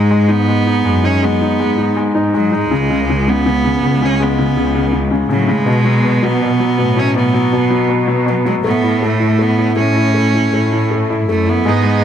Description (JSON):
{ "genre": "pop", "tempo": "81 BPM", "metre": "4/4", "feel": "straight", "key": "unclear", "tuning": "A4 = 439 Hz", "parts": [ { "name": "rich cello", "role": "melody", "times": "0.0-12.0 s", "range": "F#3 to C#4", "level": "-17 LUFS", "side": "right 4 dB", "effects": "none" }, { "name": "clear upright piano", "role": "accompaniment", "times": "0.0-12.0 s", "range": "B2 to E4", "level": "-16 LUFS", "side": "left 4 dB", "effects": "none" }, { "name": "warm symphonic cello section", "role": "bass", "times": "0.0-12.0 s", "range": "C#2 to B2", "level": "-17 LUFS", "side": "right 1 dB", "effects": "none" }, { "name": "accordion", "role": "sustained chords", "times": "11.7-12.0 s", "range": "B3 to D#5", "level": "-17 LUFS", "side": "right 5 dB", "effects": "none" } ], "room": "light reverb, studio ambience", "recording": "none", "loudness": "-12 LUFS", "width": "side -9 dB against mid", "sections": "0.0-12.0 A section", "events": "none", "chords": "0.0 G#m; 2.7 C#5; 5.7 B5; 8.7 A", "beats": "0.48 1.23 1.97 | 2.71 3.46 4.20 4.94 | 5.68 6.42 7.17 7.91 | 8.65 9.40 10.16 10.91 | 11.67" }